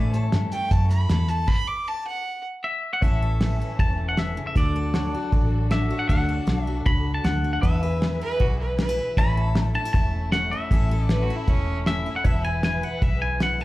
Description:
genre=honky-tonk and classic country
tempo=156 BPM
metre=4/4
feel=straight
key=A major from 3.0 s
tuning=A4 = 440 Hz
part: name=picked steel-string acoustic guitar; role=accompaniment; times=0.0-13.6 s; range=A2 to B4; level=-32 LUFS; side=left 4 dB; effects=slapback echo
part: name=pedal steel guitar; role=sustained chords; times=0.0-13.6 s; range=B4 to A5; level=-38 LUFS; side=left 1 dB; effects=wide subtle chorus
part: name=warm studio string section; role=sustained chords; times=0.0-13.6 s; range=E3 to B4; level=-37 LUFS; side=left 1 dB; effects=none
part: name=vintage muted fingered electric bass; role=bass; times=0.0-13.6 s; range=E1 to A2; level=-24 LUFS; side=equal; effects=none
part: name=cloth-damped thuddy drum kit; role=drums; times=0.1-13.5 s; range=crash cymbal, hi-hat, kick drum, snare drum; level=-24 LUFS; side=equal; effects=none
part: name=clear fiddle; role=second line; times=0.5-2.4, 8.2-11.8 s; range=C#4 to D6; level=-28 LUFS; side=right 1 dB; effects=slapback echo
part: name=twangy electric guitar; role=melody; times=2.6-13.6 s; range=D5 to B5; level=-28 LUFS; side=left 1 dB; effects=slapback echo
room=light reverb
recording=live gig heard through the venue's PA, club reverb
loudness=-21 LUFS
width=side -17 dB against mid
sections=0.0-3.0 A section; 3.0-13.6 B section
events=fiddle solo 0.0-3.0; stop 1.5-3.0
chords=0.0 A; 1.5 N.C.; 3.0 A; 4.6 D; 7.6 E; 9.2 A; 12.2 E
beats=0.32 0.71 1.09 | 1.48 1.86 2.25 2.63 | 3.02 3.40 3.79 4.17 | 4.56 4.94 5.33 5.71 | 6.09 6.48 6.87 7.25 | 7.63 8.02 8.40 8.79 | 9.17 9.56 9.94 10.32 | 10.71 11.09 11.48 11.86 | 12.25 12.63 13.02 13.40

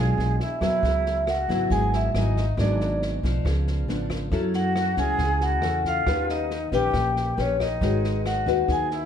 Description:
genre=bossa nova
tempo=138 BPM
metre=4/4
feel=straight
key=C# minor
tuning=A4 = 441 Hz
part: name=vibraphone with medium hard mallets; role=melody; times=0.0-9.1 s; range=C#5 to G#5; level=-27 LUFS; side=left 1 dB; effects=ping-pong delay
part: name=silver concert flute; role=second line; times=0.0-9.1 s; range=C#4 to G#4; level=-32 LUFS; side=right 3 dB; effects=none
part: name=nylon-string guitar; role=accompaniment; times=0.0-9.1 s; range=G#2 to B4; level=-27 LUFS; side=left 2 dB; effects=wide subtle chorus
part: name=upright bass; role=bass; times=0.0-9.1 s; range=G#1 to F#2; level=-26 LUFS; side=equal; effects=none
part: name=open jazz drum kit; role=drums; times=0.2-9.0 s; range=kick drum, rim click, snare drum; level=-33 LUFS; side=equal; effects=none
room=moderate plate reverb, RT60 1.1 s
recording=dreamy mix soaked in reverb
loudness=-21 LUFS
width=side -8 dB against mid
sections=0.8-9.1 A section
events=none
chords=0.0 E7b9; 0.8 C#m11; 2.6 G#m7b5; 3.5 C#7b9; 4.3 F#m7; 6.1 D#7b13; 7.8 G#m7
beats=0.40 | 0.84 1.27 1.71 2.15 | 2.58 3.02 3.45 3.89 | 4.33 4.76 5.20 5.63 | 6.07 6.50 6.94 7.38 | 7.81 8.25 8.69

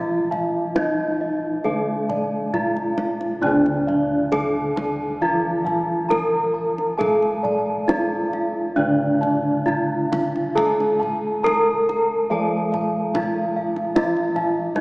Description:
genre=Javanese gamelan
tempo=67 BPM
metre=4/4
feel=straight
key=unclear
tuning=A4 = 436 Hz
part: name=gamelan-type bronze metallophone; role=melody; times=0.0-14.8 s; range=D4 to Bb4-20c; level=-22 LUFS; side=equal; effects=none
part: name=gamelan-type bronze metallophone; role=accompaniment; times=0.0-14.8 s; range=D3 to A3-30c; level=-30 LUFS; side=equal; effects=none
part: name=gamelan-type bossed gongs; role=arpeggios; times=0.0-14.8 s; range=D5 to Bb5-20c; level=-27 LUFS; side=equal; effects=none
part: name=gamelan-type bronze metallophone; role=arpeggios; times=0.0-14.8 s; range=D5 to Bb5-20c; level=-28 LUFS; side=right 1 dB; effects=none
part: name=gamelan-type bossed gongs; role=bass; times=0.0-14.8 s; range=D2 to A4-30c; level=-27 LUFS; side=equal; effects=none
part: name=kendang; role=percussion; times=0.3-14.8 s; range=none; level=-31 LUFS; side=equal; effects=none
room=wet cathedral reverb, RT60 6.1 s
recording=recorded in a church or concert hall, small speaker sound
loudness=-19 LUFS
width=side -26 dB against mid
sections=0.0-3.4 A section; 3.4-14.8 A section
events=none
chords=none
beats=0.75 1.65 2.54 | 3.43 4.32 5.21 6.11 | 7.00 7.89 8.78 9.68 | 10.57 11.45 12.31 13.14 | 13.96 14.75

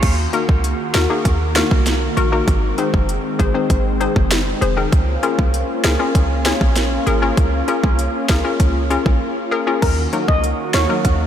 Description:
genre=dancehall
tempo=98 BPM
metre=4/4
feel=straight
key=Db major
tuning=A4 = 435 Hz
part: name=warm analog pad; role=sustained chords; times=0.0-11.3 s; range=Eb3 to Gb4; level=-24 LUFS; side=equal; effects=chorus
part: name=short 808-style bass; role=bass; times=0.0-11.3 s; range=F1 to Eb2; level=-19 LUFS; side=equal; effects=none
part: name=island pop drum kit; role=drums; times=0.0-11.2 s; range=crash cymbal, hi-hat, kick drum, snare drum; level=-20 LUFS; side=equal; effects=overdrive
part: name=hollow square pluck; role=accompaniment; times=0.3-11.0 s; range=Gb3 to Db5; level=-21 LUFS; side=left 4 dB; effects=chorus, sidechain pumping
part: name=steel pan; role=melody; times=9.8-10.9 s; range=Bb4 to Eb5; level=-22 LUFS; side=left 1 dB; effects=ping-pong delay
room=moderate huge ambient reverb, RT60 8.6 s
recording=dreamy mix soaked in reverb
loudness=-15 LUFS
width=side -10 dB against mid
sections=0.0-9.8 A section; 9.8-11.3 B section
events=break 9.2-9.8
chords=0.0 Ebm; 2.5 Ab; 4.9 Db6; 9.8 Ebm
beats=| 0.03 0.64 1.25 1.86 | 2.48 3.09 3.70 4.31 | 4.92 5.54 6.15 6.76 | 7.37 7.99 8.60 9.21 | 9.82 10.44 11.05

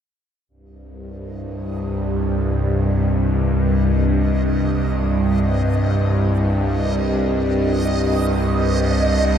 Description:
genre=dark ambient drone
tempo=free time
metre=none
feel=none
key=C minor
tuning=A4 = 440 Hz
part: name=bowed-like drone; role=drone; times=1.0-9.4 s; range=C2 to G2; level=-17 LUFS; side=equal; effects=built-in reverb, phaser
part: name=backwards swelling texture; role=texture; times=1.7-9.4 s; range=Eb5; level=-28 LUFS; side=right 2 dB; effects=built-in reverb
room=wet huge ambient reverb, RT60 8.1 s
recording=in a vast, echoing space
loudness=-17 LUFS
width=side -8 dB against mid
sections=0.5-9.4 A section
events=fade-in on synth texture 0.5-9.4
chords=0.5 Cm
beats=free time

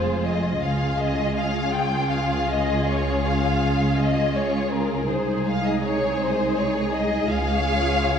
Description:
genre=classical, slow romantic movement for string orchestra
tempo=54 BPM (dotted quarters)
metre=12/8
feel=rubato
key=unclear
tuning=A4 = 441 Hz
part: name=dark symphonic violin section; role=melody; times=0.0-8.2 s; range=Bb4 to G5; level=-25 LUFS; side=left 3 dB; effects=none
part: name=warm symphonic violin section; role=second line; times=0.0-8.2 s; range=F4 to Db5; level=-29 LUFS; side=left 1 dB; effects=none
part: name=warm symphonic viola section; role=accompaniment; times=0.0-8.2 s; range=Ab3 to F4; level=-26 LUFS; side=right 1 dB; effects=none
part: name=dark symphonic cello section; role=bass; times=0.0-8.2 s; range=C2 to F2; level=-29 LUFS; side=right 2 dB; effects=none
part: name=dark symphonic double bass section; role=bass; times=0.0-8.2 s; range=F1 to Db2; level=-28 LUFS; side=right 1 dB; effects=none
room=wet scoring stage reverb, RT60 1.7 s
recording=heard from further back in the room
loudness=-20 LUFS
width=side -7 dB against mid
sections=0.0-8.2 A section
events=none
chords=0.0 Fm; 0.6 Db; 5.1 Ab/C; 7.3 Db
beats=| 0.60 1.71 2.85 3.96 | 5.08 6.18 7.28

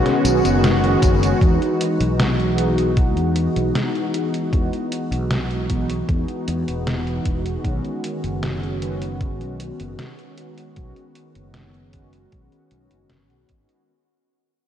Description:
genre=vaporwave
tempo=77 BPM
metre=4/4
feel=straight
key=B major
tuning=A4 = 440 Hz
part: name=mellow synth brass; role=accompaniment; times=0.0-13.9 s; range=D#3 to F#4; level=-22 LUFS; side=equal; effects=lush chorus, analog delay
part: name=warbly tape-like pad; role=sustained chords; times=0.0-1.4 s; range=D#4 to F#5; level=-30 LUFS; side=left 3 dB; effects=none
part: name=detuned 8-bit digital drum machine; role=drums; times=0.1-13.8 s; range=hi-hat, snare drum, tambourine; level=-26 LUFS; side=equal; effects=vintage 12-bit sampler grit
part: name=mellow fretless electric bass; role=bass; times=0.2-13.6 s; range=E1 to E2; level=-24 LUFS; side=equal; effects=tube saturation
part: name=electronic kick drum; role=drums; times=1.0-13.7 s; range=none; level=-20 LUFS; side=equal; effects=vintage 12-bit sampler grit
room=moderate lush hall reverb, RT60 2.7 s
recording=dreamy mix soaked in reverb, cassette tape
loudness=-18 LUFS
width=side -9 dB against mid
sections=0.0-1.4 A section; 1.4-13.9 B section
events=fade-out 1.4-13.9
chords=0.0 B69; 1.4 Emaj9; 7.6 B69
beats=0.63 | 1.41 2.19 2.97 3.75 | 4.53 5.30 6.08 6.86 | 7.64 8.42 9.20 9.98 | 10.76 11.54 12.32 13.10

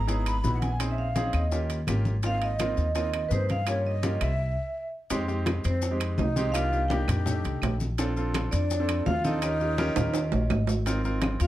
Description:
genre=Afro-Cuban jazz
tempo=167 BPM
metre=4/4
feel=straight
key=Ab major, F minor from 5.1 s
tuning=A4 = 440 Hz
part: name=vibraphone with medium hard mallets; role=melody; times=0.0-11.5 s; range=Cb5 to Cb6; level=-32 LUFS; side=right 2 dB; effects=plate reverb
part: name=breathy mellow silver concert flute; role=second line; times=0.0-11.5 s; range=C4 to Cb6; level=-36 LUFS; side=left 3 dB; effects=none
part: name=upright bass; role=bass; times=0.0-11.5 s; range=Ab1 to G2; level=-28 LUFS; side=equal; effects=none
part: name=clear grand piano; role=accompaniment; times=0.1-11.5 s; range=Ab3 to Bb4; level=-32 LUFS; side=right 1 dB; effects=none
part: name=bongos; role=percussion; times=0.1-11.5 s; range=none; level=-39 LUFS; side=left 5 dB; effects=none
part: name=congas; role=percussion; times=0.1-11.5 s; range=none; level=-34 LUFS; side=left 1 dB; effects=none
part: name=maracas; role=percussion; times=0.1-11.5 s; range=none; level=-42 LUFS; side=left 6 dB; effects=none
part: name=timbales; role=percussion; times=0.1-11.5 s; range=none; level=-34 LUFS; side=right 5 dB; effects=none
part: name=claves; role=percussion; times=0.3-11.4 s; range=none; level=-42 LUFS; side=right 3 dB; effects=none
room=moderate club reverb, RT60 0.7 s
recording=dark, warm production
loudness=-24 LUFS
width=side -14 dB against mid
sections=0.0-5.1 A section; 5.1-11.5 B section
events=stop 4.4-5.1; drum fill 10.0-10.9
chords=0.0 Dbm9 (rootless); 0.8 Bbm11; 1.5 Eb7; 2.2 Ab6; 3.7 Gm7b5; 4.4 C; 5.1 Fm9; 6.5 Cm7; 7.3 F13; 8.0 Bbmaj7; 9.4 Eb9; 10.9 Ab6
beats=0.08 0.44 | 0.80 1.16 1.52 1.88 | 2.24 2.60 2.96 3.31 | 3.67 4.03 4.39 4.75 | 5.11 5.47 5.83 6.19 | 6.55 6.91 7.27 7.63 | 7.99 8.35 8.71 9.07 | 9.43 9.79 10.15 10.51 | 10.87 11.23

